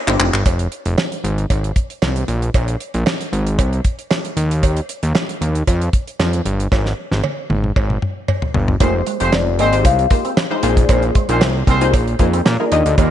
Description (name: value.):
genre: early-eighties boogie funk.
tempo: 115 BPM.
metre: 4/4.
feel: straight.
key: F dorian.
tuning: A4 = 439 Hz.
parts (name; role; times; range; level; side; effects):
funky polysynth comp; accompaniment; 0.1-0.3, 8.8-13.1 s; Ab3 to Eb5; -21 LUFS; left 4 dB; chorus.
electric guitar with an envelope filter; riff; 0.1-0.3, 8.8-13.1 s; Ab3 to Eb4; -26 LUFS; right 6 dB; wide subtle chorus.
fat analog bass; bass; 0.1-13.1 s; F1 to Bb2; -18 LUFS; equal; none.
damped 70s drum kit; drums; 0.1-13.1 s; handclaps, hi-hat, kick drum, snare drum, toms; -18 LUFS; equal; none.
cowbell; percussion; 0.5-13.1 s; none; -27 LUFS; right 7 dB; none.
marimba with soft mallets; melody; 8.8-13.1 s; C5 to F5; -21 LUFS; left 5 dB; tape echo.
warm horn section; second line; 8.8-13.1 s; G3 to C5; -23 LUFS; right 2 dB; none.
room: light reverb, small room ambience.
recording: nothing above 11.0 kHz.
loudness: -15 LUFS.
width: side -11 dB against mid.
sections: 0.5-8.8 A section; 8.8-13.1 B section.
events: drum fill 0.0-0.5, 6.7-8.8.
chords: 0.5 Fm; 2.3 Bbsus2; 4.4 Ebadd9; 6.7 N.C.; 8.8 Fm9; 10.6 Bb9sus4.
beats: | 0.46 0.98 1.50 2.02 | 2.54 3.07 3.59 4.11 | 4.63 5.15 5.67 6.20 | 6.72 7.24 7.76 8.28 | 8.80 9.33 9.85 10.37 | 10.89 11.41 11.94 12.46 | 12.98.